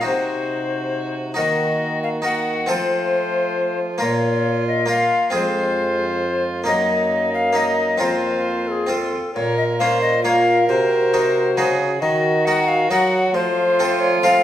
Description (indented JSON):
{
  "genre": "classical, renaissance-style consort dance",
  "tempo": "136 BPM",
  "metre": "3/4",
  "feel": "straight",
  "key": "Bb minor",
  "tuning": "A4 = 442 Hz",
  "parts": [
    { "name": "tenor recorder", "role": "melody", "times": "0.0-14.4 s", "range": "Ab4 to Gb5", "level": "-20 LUFS", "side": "left 3 dB", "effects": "none" },
    { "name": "rich violin", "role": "second line", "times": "0.0-14.4 s", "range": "Eb4 to C5", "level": "-25 LUFS", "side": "right 3 dB", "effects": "none" },
    { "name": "harpsichord", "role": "accompaniment", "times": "0.0-14.4 s", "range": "F2 to Db5", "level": "-24 LUFS", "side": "equal", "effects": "none" },
    { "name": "mellow trombone", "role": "accompaniment", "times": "0.0-14.4 s", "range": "Ab3 to Gb4", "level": "-27 LUFS", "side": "left 1 dB", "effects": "none" },
    { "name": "dark bassoon", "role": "bass", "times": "0.0-14.4 s", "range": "F2 to Gb3", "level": "-24 LUFS", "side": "right 2 dB", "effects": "none" }
  ],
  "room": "wet recital hall reverb, RT60 1.5 s",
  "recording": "recorded in a church or concert hall",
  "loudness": "-17 LUFS",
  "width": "side -11 dB against mid",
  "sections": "0.0-9.3 A section; 9.3-14.4 A section",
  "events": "none",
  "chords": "0.0 Cdim; 1.4 Ebm; 2.7 F; 4.0 Bbm; 5.3 Fm; 6.7 Ebm/Gb; 8.0 Fsus4; 8.9 F; 9.3 Bbm; 10.7 Cdim; 12.0 Ebm; 13.3 F",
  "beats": "| 0.04 0.49 0.93 | 1.37 1.81 2.25 | 2.70 3.14 3.58 | 4.02 4.46 4.90 | 5.34 5.79 6.23 | 6.67 7.12 7.56 | 8.01 8.45 8.90 | 9.35 9.79 10.24 | 10.69 11.13 11.57 | 12.02 12.46 12.90 | 13.35 13.79 14.23"
}